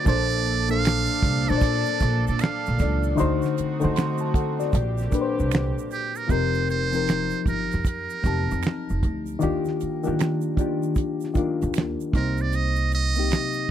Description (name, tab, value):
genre	R&B, neo-soul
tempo	77 BPM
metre	4/4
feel	swing 64% on 16ths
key	Bb major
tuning	A4 = 440 Hz
part	trumpet with metal mute	melody	0.0-13.7 s	G4 to F5	-28 LUFS	right 6 dB	none
part	bright reed electric piano	accompaniment	0.0-13.7 s	Bb2 to C6	-26 LUFS	left 4 dB	phaser
part	warm studio string section	sustained chords	0.0-6.3 s	D3 to A4	-34 LUFS	right 6 dB	none
part	upright bass	bass	0.1-13.3 s	F1 to Eb3	-26 LUFS	right 1 dB	none
part	damped 70s drum kit	drums	0.1-13.6 s	finger snaps, hi-hat, kick drum, snare drum	-24 LUFS	right 1 dB	none
part	egg shaker and finger snaps	percussion	0.1-13.7 s	none	-39 LUFS	right 20 dB	none
room	little or no reverb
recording	dry, close 1970s-style studio recording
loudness	-21 LUFS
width	side -10 dB against mid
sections	0.0-6.3 A section; 6.3-13.7 B section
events	none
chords	0.1 Bbmaj7; 3.2 D7b9; 4.7 Bb69; 6.3 F9sus4; 9.4 Ebmaj9; 12.1 Cm7